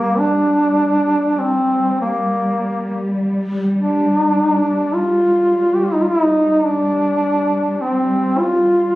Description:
caucasian folk, Caucasian lament; 51 BPM; 4/4; rubato; G minor; A4 = 440 Hz
dark duduk; melody; 0.0-9.0 s; Bb3 to G4; -15 LUFS; equal
dark symphonic cello section; drone; 0.0-9.0 s; G3; -22 LUFS; equal
moderate recital hall reverb, RT60 1.5 s; recorded on a phone in the room, studio reverb, compression; -14 LUFS; side -16 dB against mid
0.0-9.0 A section

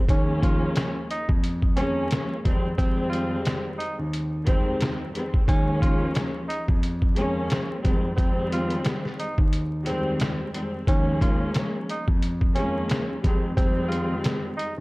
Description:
hip hop, boom-bap hip-hop; 89 BPM; 4/4; swing 57% on 16ths; A4 = 438 Hz
warm studio string section; accompaniment; 0.0-14.8 s; Eb2 to Db4; -28 LUFS; left 1 dB; cassette tape, high-pass filter, low-pass filter
mellow tenor saxophone; melody; 0.1-14.7 s; C4 to F4; -32 LUFS; right 1 dB; high-pass filter, low-pass filter, tape echo
dark baby grand piano; bass; 0.1-14.8 s; Eb2 to F2; -28 LUFS; equal
trip hop sampler-style drum kit; drums; 0.1-14.8 s; hi-hat, kick drum, snare drum; -24 LUFS; equal
small room ambience; dark, warm production, vinyl crackle; -22 LUFS; side -23 dB against mid
0.1-14.8 A section
break 9.5-10.9
0.1 Eb9sus4; 2.4 Fm9; 5.5 Eb9sus4; 7.8 Fm9; 10.9 Eb9sus4; 13.2 Fm9

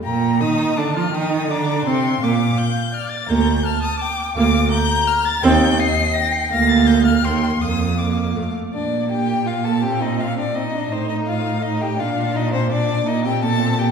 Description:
quick classical-period movement for string quartet; 166 BPM; 3/4; straight; G minor, Bb major from 4.4 s; A4 = 442 Hz
rich violin; melody; 0.0-13.9 s; C5 to C7; -23 LUFS; left 5 dB
warm violin; second line; 0.0-13.9 s; C4 to Bb5; -26 LUFS; left 3 dB
rich cello; bass; 0.0-13.9 s; D2 to F3; -21 LUFS; right 2 dB
warm viola; accompaniment; 0.1-13.9 s; A3 to F4; -21 LUFS; right 4 dB
wet scoring stage reverb, RT60 1.6 s; heard from further back in the room; -17 LUFS; side -6 dB against mid
0.0-8.7 A section; 8.7-13.9 B section
0.0 Gm/Bb; 1.1 Gm; 2.2 Bb; 3.3 Bb/D; 5.4 Cm/Eb; 6.5 Bb/D; 7.2 Cm7/Eb; 7.6 Bb/F; 8.4 F; 8.7 Bb; 9.8 Cm7/Bb; 10.9 F7/A; 12.0 Bb; 13.1 Eb6/Bb

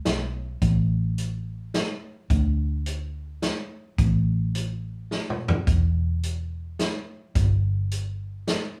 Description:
honky-tonk and classic country; 107 BPM; 3/4; straight; A4 = 442 Hz
vintage muted fingered electric bass; bass; 0.1-8.6 s; E1 to D2; -27 LUFS; equal
vintage drum kit; drums; 0.1-8.6 s; hi-hat, kick drum, snare drum, toms; -28 LUFS; equal
light reverb; band playing live in one room, small room ambience; -26 LUFS; mono
0.0-8.8 A section
drum fill 5.1-5.7

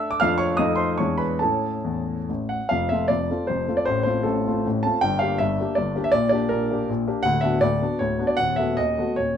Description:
classical, romantic triple-time dance for piano with dotted rhythms; 130-171 BPM; 3/4; rubato; F major; A4 = 439 Hz
clear baby grand piano; solo; 0.0-9.4 s; D1 to F6; -20 LUFS; equal
light reverb; dark, warm production; -20 LUFS; side -8 dB against mid
0.0-2.7 A section; 2.7-9.4 B section
0.2 Dm/F; 0.6 F7; 1.0 E7; 1.4 A; 2.7 F; 3.9 F/A; 5.0 Gm; 6.1 Gm/Bb; 7.2 Bm/D; 8.4 B7/D#

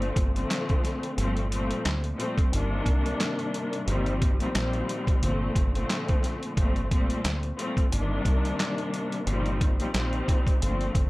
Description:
hip hop, boom-bap hip-hop; 89 BPM; 4/4; swing 56% on 16ths; G minor; A4 = 437 Hz
warm symphonic string section; accompaniment; 0.0-11.1 s; G2 to D4; -29 LUFS; left 1 dB; cassette tape, high-pass filter, low-pass filter, plate reverb
deep dub fingered electric bass; bass; 0.0-11.1 s; G1 to D2; -29 LUFS; equal
boom bap sampler-style drum kit; drums; 0.0-11.1 s; handclaps, hi-hat, kick drum, snare drum; -26 LUFS; equal
light reverb; -24 LUFS; side -20 dB against mid
0.0-11.1 A section
kick muted 1.2-1.9
0.0 Gm11; 2.5 Cm9/G; 3.9 Eb69/G; 5.2 Gm11; 7.9 Cm9/G; 9.3 Eb69/G

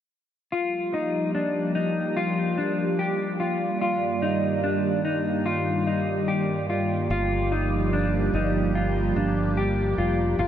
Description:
dream pop; 73 BPM; 4/4; straight; A4 = 439 Hz
phased analog pad; sustained chords; 0.5-10.5 s; G2 to D5; -26 LUFS; right 1 dB; phaser, chorus
mellow electric guitar; arpeggios; 0.5-10.5 s; D4 to G4; -26 LUFS; left 2 dB; lush chorus, tape echo
fingered electric bass; bass; 7.1-10.5 s; F1 to G1; -26 LUFS; equal
moderate huge ambient reverb, RT60 5.1 s; -22 LUFS; side -10 dB against mid
0.5-10.5 A section
0.5 Gm7; 3.8 Ebmaj7/G; 7.1 Gm7

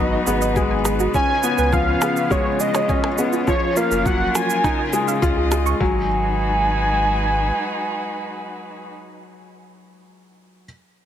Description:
piano and strings electronica; 103 BPM; 4/4; straight; G# dorian; A4 = 439 Hz
warm velvety synth lead; melody; 0.0-8.9 s; C#5 to G#5; -23 LUFS; right 1 dB; chorus
warm string quartet; sustained chords; 0.0-8.9 s; C#3 to D#5; -27 LUFS; left 1 dB
felt-muted upright piano; riff; 0.0-10.7 s; E#3 to E#4; -23 LUFS; left 3 dB; tape echo
warm sub bass; bass; 0.0-7.5 s; F#1 to C#2; -24 LUFS; equal; sidechain pumping
soft round pluck; arpeggios; 0.1-6.1 s; E#4 to C#6; -28 LUFS; right 5 dB; chorus, sidechain pumping, tape echo
shaker and percussion blips; drums; 0.3-5.8 s; -27 LUFS; right 2 dB; overdrive
electronic kick drum; drums; 0.6-5.9 s; -24 LUFS; equal
light reverb; -17 LUFS; side -10 dB against mid
0.0-5.8 A section; 5.8-8.1 B section
drop 0.0-5.8
0.0 G#m7; 1.1 C#7; 3.5 F#maj7; 4.6 C#add9; 5.8 G#m7

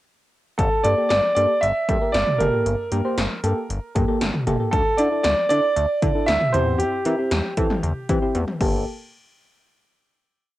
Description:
synth-pop; 116 BPM; 4/4; straight; G dorian; A4 = 440 Hz
clear baby grand piano; melody; 0.6-8.3 s; G4 to E5; -21 LUFS; right 1 dB; cassette tape
chorused synth bass; bass; 0.6-8.8 s; G1 to E3; -24 LUFS; left 1 dB
80s electronic pad drums; drums; 0.6-8.7 s; crash cymbal, hi-hat, kick drum, snare drum, toms; -24 LUFS; left 1 dB; gated reverb on snare and toms, cassette tape
soft electric-piano-like synth keys; accompaniment; 0.8-8.8 s; Bb3 to C5; -26 LUFS; equal; chorus, cassette tape
light reverb; home recording on cassette; -18 LUFS; side -15 dB against mid
0.6-8.9 verse; 8.9-10.6 final hit
drum fill 8.3-8.9
0.6 Gmadd9; 4.7 Dsus2; 6.5 C/E; 8.6 Gmadd9; 8.9 N.C.

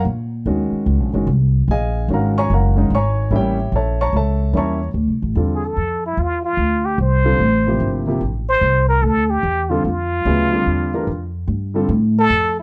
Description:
modal jazz; 147 BPM; 4/4; swing 64% on 8ths; Eb dorian, D minor from 5.0 s; A4 = 440 Hz
upright bass; bass; 0.0-12.6 s; Gb1 to Bb2; -21 LUFS; equal
warm grand piano; accompaniment; 0.5-11.9 s; C3 to Db6; -23 LUFS; equal
trumpet with plunger mute; melody; 5.5-12.6 s; E4 to C5; -21 LUFS; equal
light reverb; dark, warm production, nothing above 10.5 kHz; -18 LUFS; mono
0.0-5.0 A section; 5.0-12.6 B section
0.0 Ebm11; 3.3 A7b9; 5.0 Dm11; 11.5 G7sus2

